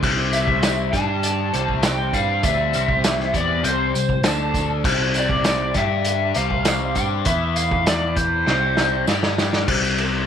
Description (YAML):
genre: psychedelic rock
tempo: 99 BPM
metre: 4/4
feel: straight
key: C major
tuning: A4 = 441 Hz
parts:
  - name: mellow tonewheel organ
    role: sustained chords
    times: 0.0-9.7 s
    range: D3 to B5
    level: -31 LUFS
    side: right 14 dB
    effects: slow rotary speaker
  - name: overdriven electric guitar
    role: riff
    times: 0.0-10.3 s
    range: C3 to G4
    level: -25 LUFS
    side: left 12 dB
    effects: flanger
  - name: picked electric bass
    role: bass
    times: 0.0-10.3 s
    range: C2 to G2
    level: -25 LUFS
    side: right 1 dB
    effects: none
  - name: vintage drum kit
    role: drums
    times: 0.0-10.1 s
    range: crash cymbal, hi-hat, kick drum, ride cymbal, snare drum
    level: -22 LUFS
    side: right 1 dB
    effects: none
  - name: tambourine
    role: percussion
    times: 0.0-10.1 s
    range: none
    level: -35 LUFS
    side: right 14 dB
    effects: none
  - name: lead guitar through a small cranked amp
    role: melody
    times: 0.3-9.0 s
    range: C5 to A5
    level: -23 LUFS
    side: left 1 dB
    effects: wah, overdrive, tape echo
room: light reverb, studio reverb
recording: 1960s-style stereo with parts hard left and right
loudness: -18 LUFS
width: side -8 dB against mid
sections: 0.0-9.7 A section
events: drum fill 8.5-9.7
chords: 0.0 C; 0.9 G5; 1.5 C; 4.3 D5; 4.9 C; 5.8 G5; 6.4 C5; 7.3 E5; 8.5 C; 9.1 G5; 9.7 C5